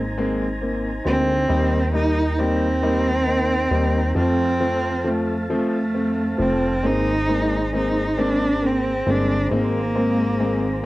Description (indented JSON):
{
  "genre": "six-eight pop ballad",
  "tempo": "45 BPM (dotted quarters)",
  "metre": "6/8",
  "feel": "straight",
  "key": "unclear",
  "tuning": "A4 = 440 Hz",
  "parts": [
    { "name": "mellow tonewheel organ", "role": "sustained chords", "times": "0.0-10.9 s", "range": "C4 to Bb5", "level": "-30 LUFS", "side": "equal", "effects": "overdrive, fast rotary speaker, cassette tape" },
    { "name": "chorused synth bass", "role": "bass", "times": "0.0-10.9 s", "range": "F1 to F2", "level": "-25 LUFS", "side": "equal", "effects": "none" },
    { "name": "clear concert grand piano", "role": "accompaniment", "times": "0.2-10.7 s", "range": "F3 to Eb4", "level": "-24 LUFS", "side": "left 1 dB", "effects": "cassette tape" },
    { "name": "rich cello", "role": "melody", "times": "1.1-10.9 s", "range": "A3 to Eb4", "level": "-22 LUFS", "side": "right 1 dB", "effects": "cassette tape" }
  ],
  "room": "moderate small room reverb, RT60 0.5 s",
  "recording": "home recording on cassette",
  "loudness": "-18 LUFS",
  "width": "side -18 dB against mid",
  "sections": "0.0-10.9 A section",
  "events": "none",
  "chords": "0.0 Abadd9; 1.5 Eb; 4.2 F; 6.8 Abadd9",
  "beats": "0.17 | 1.50 2.83 | 4.17 5.50 | 6.85 8.19 | 9.52 10.85"
}